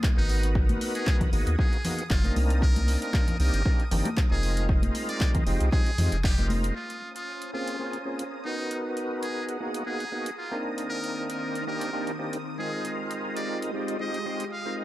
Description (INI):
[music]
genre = deep house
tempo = 116 BPM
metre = 4/4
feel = swing 54% on 16ths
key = unclear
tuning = A4 = 441 Hz
[part]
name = electronic kick drum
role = drums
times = 0.0-6.4 s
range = none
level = -24 LUFS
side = equal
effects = none
[part]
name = punchy analog drum machine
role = drums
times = 0.0-14.5 s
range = handclaps, hi-hat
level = -37 LUFS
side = equal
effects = dub echo
[part]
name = analog string pad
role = texture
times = 0.0-14.8 s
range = Eb6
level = -45 LUFS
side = equal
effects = ensemble chorus, sidechain pumping
[part]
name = trumpet with metal mute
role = melody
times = 0.2-14.7 s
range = Eb4 to F5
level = -35 LUFS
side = equal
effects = analog delay
[part]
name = overdriven tonewheel organ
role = stabs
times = 0.2-14.8 s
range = Ab3 to Cb5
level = -32 LUFS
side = right 1 dB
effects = chorus vibrato, slow rotary speaker, sidechain pumping, low-pass filter, tape echo
[part]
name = round analog bass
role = bass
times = 0.2-6.7 s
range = F1 to F2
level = -25 LUFS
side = equal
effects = none
[part]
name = congas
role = percussion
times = 0.7-6.6 s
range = none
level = -35 LUFS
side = left 2 dB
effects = sidechain pumping on perc, dub echo
[part]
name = soft string machine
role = sustained chords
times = 7.1-14.8 s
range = Eb3 to Bb5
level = -37 LUFS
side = equal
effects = ensemble chorus, vintage 12-bit sampler grit, sidechain pumping
[sound]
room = little or no reverb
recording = echo-heavy mix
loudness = -25 LUFS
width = side -15 dB against mid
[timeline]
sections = 0.0-6.8 A section; 6.8-14.8 B section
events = band accent 6.2; filter sweep on tonewheel organ 6.8-14.8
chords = 0.3 Abm9; 2.4 Cm9; 4.4 Fm9; 6.8 Bbm9; 8.6 Abm9; 10.6 Cm9; 12.7 Fm9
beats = 0.04 | 0.55 1.07 1.59 2.10 | 2.62 3.14 3.66 4.17 | 4.69 5.21 5.72 6.24 | 6.76 7.28 7.79 8.31 | 8.83 9.35 9.86 10.38 | 10.90 11.41 11.93 12.45 | 12.97 13.48 14.00 14.52